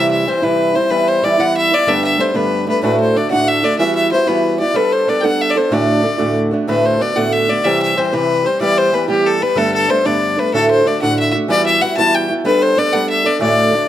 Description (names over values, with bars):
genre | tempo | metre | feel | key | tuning
celtic folk | 125 BPM (dotted quarters) | 6/8 | straight | D mixolydian | A4 = 444 Hz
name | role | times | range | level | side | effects
clear fiddle | melody | 0.0-13.9 s | G4 to A5 | -15 LUFS | left 2 dB | none
fingerpicked old ladder-braced acoustic guitar | accompaniment | 0.0-13.9 s | D2 to A4 | -16 LUFS | right 2 dB | none
room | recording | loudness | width
light reverb | close, detailed microphones | -13 LUFS | side -11 dB against mid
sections
0.0-6.7 A section; 6.7-13.9 A section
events
none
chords
0.0 C; 0.9 Em; 1.9 Gadd9; 2.8 D; 3.8 Emadd9; 4.8 Gadd9; 5.7 D; 6.7 D6; 7.6 C; 8.6 Em; 9.6 Gadd9; 10.5 D; 11.5 Emadd9; 12.4 Gadd9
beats
0.42 | 0.90 1.38 | 1.87 2.35 | 2.83 3.31 | 3.79 4.28 | 4.76 5.24 | 5.72 6.20 | 6.68 7.16 | 7.64 8.12 | 8.61 9.09 | 9.57 10.05 | 10.53 11.01 | 11.49 11.97 | 12.45 12.93 | 13.41